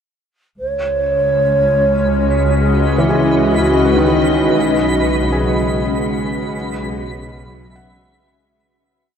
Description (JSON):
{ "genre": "ambient", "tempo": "60 BPM", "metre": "4/4", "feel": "straight", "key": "C# minor", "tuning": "A4 = 441 Hz", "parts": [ { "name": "mellow hollow alto flute", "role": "melody", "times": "0.6-4.6 s", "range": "E4 to C#5", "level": "-18 LUFS", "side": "right 1 dB", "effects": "shimmer reverb, ping-pong delay" }, { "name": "glassy FM pad", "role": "sustained chords", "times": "0.6-8.5 s", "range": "G#3 to E5", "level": "-18 LUFS", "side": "left 1 dB", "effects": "ensemble chorus, built-in reverb, shimmer reverb" }, { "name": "warm studio double bass section", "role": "bass", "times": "0.6-8.5 s", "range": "B1 to C#2", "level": "-20 LUFS", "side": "equal", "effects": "none" }, { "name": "twinkling granular texture", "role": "texture", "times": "2.0-8.6 s", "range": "B5", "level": "-28 LUFS", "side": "right 1 dB", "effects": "built-in reverb, shimmer reverb" }, { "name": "felt-muted upright piano", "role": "arpeggios", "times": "3.0-9.2 s", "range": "D#3 to F#5", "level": "-19 LUFS", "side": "equal", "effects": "shimmer reverb, ping-pong delay" }, { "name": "analog drone", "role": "drone", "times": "5.1-8.6 s", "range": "C#3 to G#3", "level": "-27 LUFS", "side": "equal", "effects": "chorus" } ], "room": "wet huge ambient reverb, RT60 7.8 s", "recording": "none", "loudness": "-13 LUFS", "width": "side -7 dB against mid", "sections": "0.6-8.5 A section", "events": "fade-in on synth texture 0.6-8.5; fade-out 4.6-8.5", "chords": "0.6 C#m7; 4.6 G#m7/B; 6.5 Bsus24" }